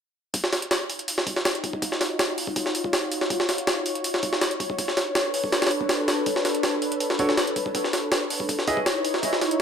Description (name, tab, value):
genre	drum and bass, jungle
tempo	162 BPM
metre	4/4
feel	straight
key	unclear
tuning	A4 = 440 Hz
part	lush unison pad	sustained chords	1.2-9.6 s	D4 to Db5	-27 LUFS	left 1 dB	chorus
part	jungle sampler-style drum kit	drums	0.3-9.6 s	hi-hat, kick drum, snare drum	-24 LUFS	equal	overdrive, high-pass filter on hats, high-pass filter on kick, high-pass filter on snare
part	warm grand piano	stabs	7.2-8.8 s	D4 to Eb5	-28 LUFS	right 1 dB	dub echo
room	light reverb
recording	none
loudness	-22 LUFS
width	side -7 dB against mid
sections	0.3-9.6 A section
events	filter sweep on analog synth pad 0.3-9.6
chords	0.3 Ebm9; 4.8 Bm9; 8.5 Dbm9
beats	| 0.34 0.71 1.08 1.45 | 1.82 2.19 2.56 2.93 | 3.30 3.67 4.04 4.42 | 4.79 5.16 5.53 5.90 | 6.27 6.64 7.01 7.38 | 7.75 8.12 8.49 8.86 | 9.23 9.60